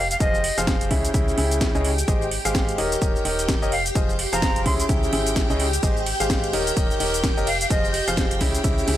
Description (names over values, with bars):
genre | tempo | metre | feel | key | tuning
piano house | 128 BPM | 4/4 | swing 59% on 16ths | unclear | A4 = 437 Hz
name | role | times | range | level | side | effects
bright silver concert flute | melody | 0.0-0.6, 3.7-8.1 s | Eb5 to C6 | -28 LUFS | equal | analog delay
string machine, violins | sustained chords | 0.0-9.0 s | G4 to G5 | -29 LUFS | left 1 dB | ensemble chorus, sidechain pumping
organ-like FM bass | bass | 0.0-9.0 s | Eb1 to Db2 | -28 LUFS | equal | sidechain pumping
house drum kit | drums | 0.1-9.0 s | cabasa, hi-hat, ride cymbal, snare drum | -27 LUFS | equal | studio reverb
clear concert grand piano | riff | 0.2-9.0 s | Db3 to F5 | -25 LUFS | equal | sidechain pumping, analog delay
electronic kick drum | drums | 0.2-8.8 s | none | -23 LUFS | equal | studio reverb
room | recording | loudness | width
little or no reverb | dry, gritty hardware recording, transformer saturation | -19 LUFS | side -13 dB against mid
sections
0.0-9.0 A section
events
none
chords
0.0 Fm7; 0.9 Dbm; 2.1 Abmaj7; 2.8 Eb7; 3.7 Fm7; 4.7 Dbm; 5.8 Abmaj7; 6.5 Eb7; 7.5 Fm7; 8.4 Dbm